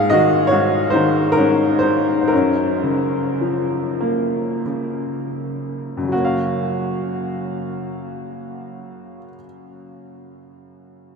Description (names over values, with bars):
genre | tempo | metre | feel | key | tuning
classical, lyrical solo piano | 38-73 BPM | 3/4 | rubato | Gb lydian | A4 = 439 Hz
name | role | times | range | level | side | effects
clear upright piano | solo | 0.0-11.2 s | Gb2 to F5 | -18 LUFS | left 1 dB | none
room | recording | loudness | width
wet huge ambient reverb, RT60 8.1 s | in a vast, echoing space | -17 LUFS | side -5 dB against mid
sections
0.0-6.1 A section; 6.1-10.5 B section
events
slowing down 0.0-6.1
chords
0.0 Ab7sus4; 2.3 Gbmaj7